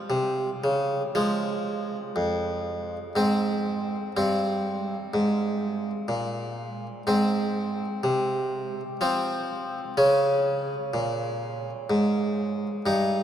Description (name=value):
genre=classical, baroque-style suite movement for harpsichord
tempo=62 BPM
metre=3/4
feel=rubato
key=F minor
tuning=A4 = 440 Hz
part: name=harpsichord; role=solo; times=0.0-13.2 s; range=F2 to C5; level=-24 LUFS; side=equal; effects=none
room=wet cathedral reverb, RT60 6.9 s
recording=none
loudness=-24 LUFS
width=side -10 dB against mid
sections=0.0-1.2 A section; 1.2-13.2 B section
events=none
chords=0.1 N.C.; 1.2 Fm; 3.2 Ab; 4.2 C5/G; 7.1 Ab; 9.0 F5; 10.0 Db5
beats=0.11 | 1.15 2.16 3.16 | 4.16 5.13 6.09 | 7.06 8.04 9.00 | 9.97 10.92 11.88 | 12.85